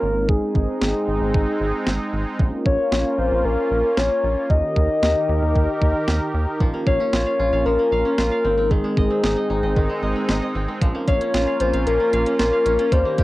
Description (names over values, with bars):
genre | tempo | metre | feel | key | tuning
synth-pop | 114 BPM | 4/4 | straight | Bb dorian | A4 = 438 Hz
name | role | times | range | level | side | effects
soft octave-layered synth lead | melody | 0.0-13.2 s | Ab4 to Eb5 | -21 LUFS | left 2 dB | chorus, plate reverb
sweeping resonant pad | sustained chords | 0.0-13.2 s | Eb3 to Bb4 | -25 LUFS | right 1 dB | chorus, cassette tape, plate reverb
rubbery square bass | bass | 0.0-13.2 s | Ab1 to Eb2 | -24 LUFS | equal | none
clean 12-bit digital drum machine | drums | 0.3-13.2 s | hi-hat, kick drum, snare drum | -21 LUFS | equal | overdrive, cassette tape
koto | arpeggios | 6.6-13.2 s | Eb3 to F5 | -29 LUFS | equal | cassette tape, tape echo, plate reverb
room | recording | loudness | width
moderate booth ambience, RT60 0.2 s | home recording on cassette | -18 LUFS | side -18 dB against mid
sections
0.0-13.2 A section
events
none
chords
0.0 Ab; 2.4 Bbm; 4.5 Eb; 6.6 Bbm; 8.4 Ab; 10.8 Bbm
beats
| 0.29 0.81 1.34 1.87 | 2.39 2.92 3.45 3.97 | 4.50 5.03 5.55 6.08 | 6.61 7.13 7.66 8.18 | 8.71 9.24 9.76 10.29 | 10.81 11.34 11.87 12.39 | 12.92